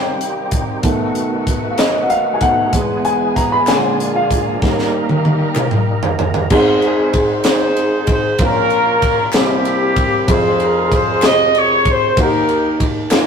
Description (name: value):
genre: slow gospel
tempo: 64 BPM (dotted quarters)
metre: 6/8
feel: straight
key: Ab major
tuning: A4 = 441 Hz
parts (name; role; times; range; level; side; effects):
- warm upright piano; accompaniment; 0.0-13.3 s; F1 to B5; -17 LUFS; equal; none
- tonewheel organ; sustained chords; 0.0-6.5 s; Eb3 to Bb4; -25 LUFS; right 3 dB; slow rotary speaker, overdrive, chorus vibrato
- warm studio string section; sustained chords; 0.0-6.5 s; G3 to Bb4; -26 LUFS; left 1 dB; none
- tight funk drum kit; drums; 0.2-13.3 s; crash cymbal, hi-hat, kick drum, ride cymbal, snare drum, toms; -18 LUFS; equal; none
- group handclap; percussion; 1.8-13.3 s; none; -30 LUFS; left 3 dB; none
- mellow horn section; melody; 6.8-13.1 s; Bb3 to Eb5; -16 LUFS; equal; none
room: wet stone room reverb, RT60 1.4 s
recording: rough rehearsal-room recording, tube saturation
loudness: -13 LUFS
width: side -6 dB against mid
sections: 0.0-6.5 A section; 6.5-13.3 B section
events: upright piano solo 0.0-6.5; drum fill 4.6-6.5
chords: 0.0 Cm; 0.8 B7; 2.7 E; 3.7 Bb7; 4.6 Eb; 6.5 Ab; 8.4 Bbm; 9.3 C7; 10.3 Fm; 12.2 Eb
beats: | 0.84 1.79 | 2.73 3.68 | 4.62 5.57 | 6.51 7.46 | 8.40 9.34 | 10.29 11.23 | 12.17 13.12